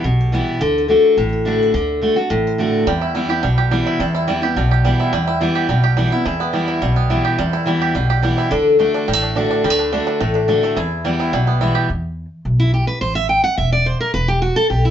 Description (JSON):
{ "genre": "bluegrass", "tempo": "213 BPM", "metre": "4/4", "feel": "straight", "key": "E minor", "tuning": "A4 = 440 Hz", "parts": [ { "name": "picked steel-string acoustic guitar", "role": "melody", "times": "0.0-11.6 s", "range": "F4 to G5", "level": "-21 LUFS", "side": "left 6 dB", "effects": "none" }, { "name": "picked steel-string acoustic guitar", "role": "accompaniment", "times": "0.0-14.9 s", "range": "E2 to G5", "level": "-18 LUFS", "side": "equal", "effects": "none" }, { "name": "upright bass", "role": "bass", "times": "0.0-14.9 s", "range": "E1 to E2", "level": "-20 LUFS", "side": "equal", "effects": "none" }, { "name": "bluegrass banjo", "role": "melody", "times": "2.9-11.9 s", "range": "G3 to G4", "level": "-21 LUFS", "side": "right 4 dB", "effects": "none" } ], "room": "moderate studio reverb, RT60 0.5 s", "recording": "band playing live in one room, nothing above 7.7 kHz", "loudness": "-15 LUFS", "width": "side -9 dB against mid", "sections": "0.0-11.9 A section; 11.9-14.9 B section", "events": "steel-string acoustic guitar solo 11.9-14.9", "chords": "0.0 Em; 0.6 D; 2.9 Em; 8.5 D; 10.8 Em; 13.0 A5; 14.1 E5" }